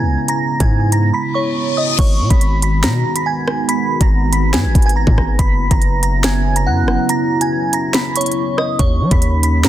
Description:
hip hop, drill; 141 BPM; 4/4; half-time; G# minor; A4 = 440 Hz
glassy synth bell; melody; 0.0-9.7 s; C#5 to B6; -20 LUFS; right 2 dB; chorus, low-pass filter, tape echo
dark analog pad; sustained chords; 0.0-9.7 s; C#3 to F#4; -21 LUFS; right 1 dB; chorus, phaser
hard-hitting 808-style bass; bass; 0.0-9.7 s; F#1 to G3; -16 LUFS; equal
drill drum kit; drums; 0.3-9.7 s; crash cymbal, hi-hat, kick drum, rim click, snare drum; -16 LUFS; equal
reverse cymbal; sound effects; 1.4-2.0 s; -22 LUFS; left 8 dB
light reverb; dense, heavily limited modern master; -13 LUFS; side -12 dB against mid
0.0-2.0 A section; 2.0-9.7 B section
break 1.1-2.0; reverse cymbal 1.4-2.0; kick muted 7.1-8.8
0.0 C#m7; 2.0 G#m7; 5.4 F#7sus4; 8.8 D#7

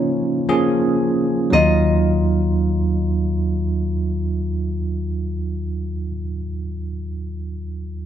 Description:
pop; 57 BPM; 4/4; straight; Eb minor; A4 = 440 Hz
flamenco guitar; melody; 0.0-6.1 s; Db4 to Eb5; -22 LUFS; left 2 dB
bell-like tine electric piano; accompaniment; 0.0-8.1 s; Eb2 to Ab4; -19 LUFS; right 1 dB; medium stereo tremolo
light reverb; band playing live in one room; -18 LUFS; side -10 dB against mid
0.0-1.5 A section; 1.5-5.7 B section
slowing down 0.0-1.5
0.0 Bbm; 1.5 Ebmadd9

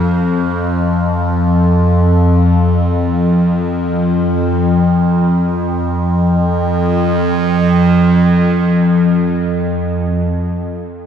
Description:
world meditative, free-time meditation music; free time; A4 = 441 Hz
evolving wavetable pad; solo; 0.0-10.3 s; F2; -11 LUFS; equal; phaser, built-in reverb, diffuse ambient delay
wet huge ambient reverb, RT60 5.8 s; dark, warm production; -11 LUFS; side -8 dB against mid
0.0-6.3 A section; 6.3-10.0 B section

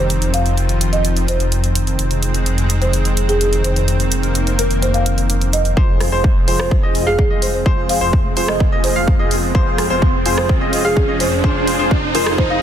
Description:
EDM, festival progressive house; 127 BPM; 4/4; straight; F minor; A4 = 440 Hz
folk marimba with soft mallets; melody; 0.0-12.6 s; Ab4 to F5; -22 LUFS; equal; ping-pong delay
lush unison pad; sustained chords; 0.0-12.6 s; Eb3 to C4; -23 LUFS; equal; chorus, sidechain pumping
detuned saw bass; bass; 0.0-12.6 s; F1; -20 LUFS; equal; tube saturation, sidechain pumping
big-room dance drum kit; drums; 0.1-12.4 s; hi-hat, rim click; -24 LUFS; right 1 dB; soft clipping on snare
bright grand piano; arpeggios; 5.8-12.6 s; C5 to F5; -23 LUFS; left 1 dB; sidechain pumping, low-pass filter, ping-pong delay
dense compressed supersaw; riff; 5.8-12.6 s; F4 to F5; -22 LUFS; equal; vintage 12-bit sampler grit, sidechain pumping, low-pass filter, ping-pong delay
electronic kick drum; drums; 5.8-12.5 s; -16 LUFS; equal; overdrive
riser; sound effects; 7.3-12.6 s; -24 LUFS; right 2 dB
light reverb, digital ambience; dense, heavily limited modern master; -14 LUFS; side -10 dB against mid
0.0-5.8 A section; 5.8-12.6 B section
build-up 5.8-12.6; filter sweep on supersaw synth 5.8-12.6; filter sweep 5.8-12.6; riser 7.3-12.6
0.0 Cm/F; 2.0 Ab/F; 5.8 Fm

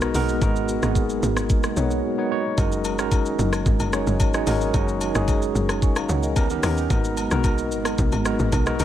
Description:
amapiano; 111 BPM; 4/4; straight; G# minor; A4 = 441 Hz
tine electric piano; accompaniment; 0.0-8.8 s; G#3 to C#6; -24 LUFS; right 1 dB; medium stereo tremolo
string machine, cellos; sustained chords; 0.0-8.8 s; D#3 to B4; -31 LUFS; equal; ensemble chorus, sidechain pumping
tight log drum bass; bass; 0.0-8.8 s; F#1 to D#2; -25 LUFS; equal
smooth R&B drum kit; drums; 0.0-8.8 s; hi-hat, kick drum, rim click, shaker; -23 LUFS; equal; vintage 12-bit sampler grit
agogo bells; percussion; 2.6-8.8 s; -35 LUFS; left 6 dB
little or no reverb; -20 LUFS; side -11 dB against mid
0.0-8.8 A section
break 2.0-2.6
0.0 G#m9; 2.6 F#69; 6.4 D#7b13; 6.9 G#m9

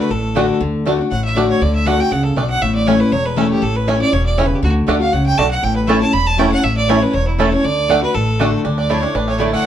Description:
bluegrass; 239 BPM; 4/4; straight; D major; A4 = 440 Hz
clear fiddle; melody; 0.0-9.7 s; E4 to B5; -20 LUFS; right 2 dB; plate reverb
picked steel-string acoustic guitar; accompaniment; 0.0-9.6 s; E2 to F#4; -18 LUFS; left 3 dB
upright bass; bass; 0.1-9.5 s; E1 to D2; -19 LUFS; equal
bluegrass banjo; arpeggios; 0.4-9.7 s; A3 to E4; -21 LUFS; right 4 dB
mandolin; stabs; 0.4-0.5, 4.9-9.5 s; A3 to A5; -20 LUFS; right 5 dB
light reverb; dark, warm production; -13 LUFS; side -10 dB against mid
0.6-8.6 A section; 8.6-9.7 B section
fiddle solo 8.6-9.7
0.0 D; 2.6 A; 4.6 D; 5.6 A; 7.6 D; 8.6 Dsus2

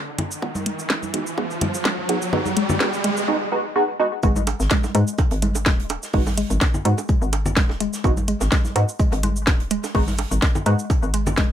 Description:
minimal techno; 126 BPM; 4/4; swing 54% on 16ths; G# minor; A4 = 438 Hz
riser; sound effects; 0.0-3.3 s; -26 LUFS; right 1 dB
hollow square pluck; riff; 0.2-11.4 s; G#3; -27 LUFS; left 1 dB; chorus, sidechain pumping, dub echo
garage drum kit; drums; 0.2-11.5 s; hi-hat, shaker, snare drum; -24 LUFS; equal; small room ambience
congas and bongos; percussion; 0.2-11.4 s; -28 LUFS; right 1 dB; small room ambience, ping-pong delay
filtered dub chord stab; stabs; 0.4-10.7 s; G#3 to F#4; -24 LUFS; right 2 dB; analog chorus, cassette tape, ping-pong delay
electronic kick drum; drums; 0.4-11.5 s; -20 LUFS; equal; high-pass filter on kick, small room ambience, high-pass filter on room
hollow knocking FM bass; bass; 4.2-11.5 s; D#1 to G#2; -23 LUFS; equal; sidechain pumping
loose indie drum kit; drums; 4.2-11.5 s; hi-hat, shaker, snare drum; -36 LUFS; right 1 dB; sidechain pumping on hats, high-pass filter on hats, low-pass filter on hats, small room ambience, high-pass filter on snare, low-pass filter on snare, sidechain pumping on perc, high-pass filter on perc, low-pass filter on perc, high-pass filter on room, low-pass filter on room
light reverb; -19 LUFS; side -10 dB against mid
0.0-4.2 A section; 4.2-11.5 B section
build-up 0.0-4.2; riser 0.0-3.3; filter sweep on synth arpeggio sound 0.0-4.2; filter sweep on synth stab 0.0-4.2; drop 4.2-11.5
0.0 G#m7

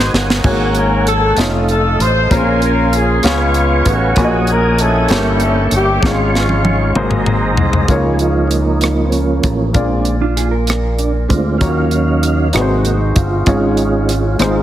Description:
slow gospel; 64 BPM (dotted quarters); 6/8; straight; Db major; A4 = 439 Hz
mellow horn section; melody; 0.0-7.3 s; Ab3 to C5; -16 LUFS; left 1 dB
clear upright piano; accompaniment; 0.0-14.6 s; G2 to Ab5; -19 LUFS; left 2 dB
tonewheel organ; sustained chords; 0.0-14.6 s; F3 to Eb6; -19 LUFS; right 3 dB; slow rotary speaker, chorus vibrato
fingered electric bass; bass; 0.0-14.6 s; F1 to Eb2; -17 LUFS; equal
tight funk drum kit; drums; 0.1-14.6 s; crash cymbal, hi-hat, kick drum, rim click, snare drum, toms; -18 LUFS; equal
mellow electric guitar; second line; 10.2-11.4 s; D4 to Bb4; -21 LUFS; right 6 dB; tape echo
light reverb; heavily compressed radio sound; -12 LUFS; side -12 dB against mid
0.0-7.9 A section; 7.9-14.6 B section
drum fill 0.0-0.4, 6.0-7.9; tonewheel organ solo 7.9-14.6
0.4 Ab9sus4; 1.4 F7b13; 2.3 Bbm9; 3.2 Db7; 4.2 Gb69/Bb; 5.1 Gdim7; 6.0 Db/Ab; 7.0 Ab9; 7.9 Db6; 9.7 Bb7; 11.6 Ebm7; 12.5 Ab7; 13.5 Db/Ab

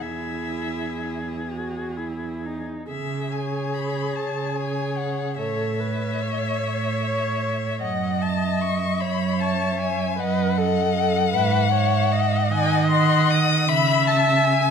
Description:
classical, slow romantic movement for string quartet; 40-53 BPM (dotted quarters); 6/8; rubato; A4 = 441 Hz
warm violin; melody; 0.0-14.7 s; E5 to D#6; -26 LUFS; left 9 dB
warm violin; second line; 0.0-14.7 s; G#4 to F#5; -29 LUFS; left 5 dB
warm viola; accompaniment; 0.0-14.7 s; D#4 to E5; -27 LUFS; right 1 dB
warm cello; bass; 0.0-14.7 s; E2 to D#3; -24 LUFS; right 4 dB
moderate recital hall reverb, RT60 1.6 s; close, detailed microphones; -20 LUFS; side -7 dB against mid
0.0-2.9 A section; 2.9-14.7 B section
0.0 E; 2.9 C#5; 5.4 A; 7.8 F#5; 10.2 F#m6; 11.3 E/G#; 12.5 D#madd11; 13.7 C#m

